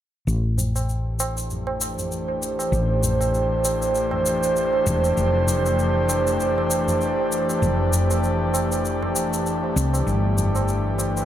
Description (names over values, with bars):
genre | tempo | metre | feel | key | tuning
organic downtempo | 98 BPM | 4/4 | swing 57% on 16ths | A minor | A4 = 444 Hz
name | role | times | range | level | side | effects
airy breathy pad | sustained chords | 1.4-11.2 s | E3 to C5 | -22 LUFS | right 1 dB | chorus
woody fretless electric bass | bass | 0.3-11.2 s | E1 to C2 | -24 LUFS | left 1 dB | tube saturation
shaker | drums | 0.3-11.2 s | none | -29 LUFS | left 3 dB | none
tabla | percussion | 0.6-11.1 s | none | -30 LUFS | right 2 dB | tape echo
room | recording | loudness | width
wet spring reverb, RT60 2.0 s | echo-heavy mix | -20 LUFS | side -11 dB against mid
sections
0.3-11.2 A section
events
none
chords
0.3 Am7; 5.2 Fmaj7; 10.1 G